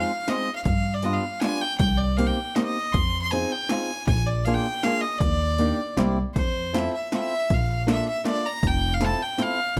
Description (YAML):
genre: musette waltz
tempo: 159 BPM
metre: 3/4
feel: straight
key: F major from 6.4 s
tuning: A4 = 440 Hz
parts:
  - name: bright violin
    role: melody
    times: 0.0-9.8 s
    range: C5 to C6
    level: -29 LUFS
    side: equal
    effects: none
  - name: fingerpicked swing-style acoustic guitar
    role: accompaniment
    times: 0.0-9.6 s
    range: G3 to A4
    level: -30 LUFS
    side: equal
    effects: none
  - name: upright bass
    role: bass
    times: 0.0-9.8 s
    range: F1 to G2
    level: -28 LUFS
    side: equal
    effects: none
  - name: punchy analog drum machine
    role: drums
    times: 0.3-9.8 s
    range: hi-hat, kick drum, snare drum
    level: -28 LUFS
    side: equal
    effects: overdrive
room: light reverb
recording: close, detailed microphones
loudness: -24 LUFS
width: mono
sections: 0.0-6.4 A section; 6.4-9.8 B section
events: none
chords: 0.0 Fm7; 0.7 G7; 1.8 Cm7; 3.0 Fm7; 4.1 Bb7; 5.2 Ebmaj7; 6.0 C7; 6.4 Fmaj7; 7.5 Bbmaj7; 8.6 Fmaj7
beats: 0.29 | 0.66 1.04 1.42 | 1.80 2.19 2.57 | 2.95 3.33 3.70 | 4.08 4.46 4.83 | 5.21 5.58 5.97 | 6.36 6.74 7.12 | 7.51 7.88 8.26 | 8.63 9.01 9.38 | 9.77